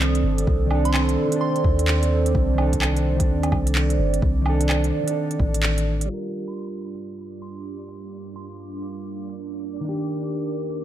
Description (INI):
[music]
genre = future garage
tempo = 128 BPM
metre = 4/4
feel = swing 63% on 16ths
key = C dorian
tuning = A4 = 440 Hz
[part]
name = mellow electric guitar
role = accompaniment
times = 0.0-10.8 s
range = Eb3 to Bb4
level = -28 LUFS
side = left 1 dB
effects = vintage 12-bit sampler grit, sidechain pumping, diffuse ambient delay
[part]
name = dark analog pad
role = sustained chords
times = 0.0-10.8 s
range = Eb3 to G5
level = -27 LUFS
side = right 4 dB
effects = chorus, phaser, sidechain pumping
[part]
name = soft 808-style bass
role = bass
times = 0.0-6.1 s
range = G1 to Eb2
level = -22 LUFS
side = equal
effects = tube saturation, sidechain pumping
[part]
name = organic electronic drum kit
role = drums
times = 0.0-10.8 s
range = handclaps, hi-hat, woodblock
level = -27 LUFS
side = right 1 dB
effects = overdrive
[part]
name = electronic kick drum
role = drums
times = 0.5-5.5 s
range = none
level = -23 LUFS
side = equal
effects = none
[part]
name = soft synth bell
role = melody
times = 0.9-2.1, 6.5-8.8 s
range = C6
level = -35 LUFS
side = right 2 dB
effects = chorus, diffuse ambient delay
[part]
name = backwards swelling texture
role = texture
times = 7.0-10.8 s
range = D4 to D6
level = -35 LUFS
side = right 3 dB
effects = built-in reverb, analog chorus
[sound]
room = light reverb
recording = low-pass filter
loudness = -19 LUFS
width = side -12 dB against mid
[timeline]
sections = 0.0-6.1 A section; 6.1-10.8 B section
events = filter sweep 6.1-10.8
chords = 0.0 Cm69; 6.1 Gm7; 9.8 Ebmaj7